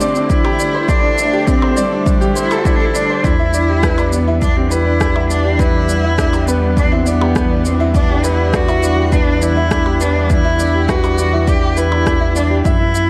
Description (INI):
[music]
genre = piano and strings electronica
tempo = 102 BPM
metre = 4/4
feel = straight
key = E minor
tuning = A4 = 440 Hz
[part]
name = warm cello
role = melody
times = 0.0-13.1 s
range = G3 to G4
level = -21 LUFS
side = equal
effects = none
[part]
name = lush unison pad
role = sustained chords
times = 0.0-13.1 s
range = D3 to F#5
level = -27 LUFS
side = equal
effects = chorus, phaser
[part]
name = clear grand piano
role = riff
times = 0.0-13.1 s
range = D4 to E5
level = -21 LUFS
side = equal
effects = none
[part]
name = electronic shaker, percussion blips and rim click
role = drums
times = 0.0-13.1 s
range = none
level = -26 LUFS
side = equal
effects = overdrive, high-pass filter on perc, high-pass filter on snare
[part]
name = electronic kick drum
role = drums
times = 0.3-12.8 s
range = none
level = -20 LUFS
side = equal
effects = overdrive
[part]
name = round analog bass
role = bass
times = 3.2-13.1 s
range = E2 to F#2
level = -20 LUFS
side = equal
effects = sidechain pumping
[sound]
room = moderate echo chamber reverb, RT60 1.6 s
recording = none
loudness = -15 LUFS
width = mono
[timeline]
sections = 0.0-3.2 A section; 3.2-13.1 B section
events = build-up 0.0-3.2; drop 3.2-13.1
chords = 0.0 D7sus4; 3.2 Em9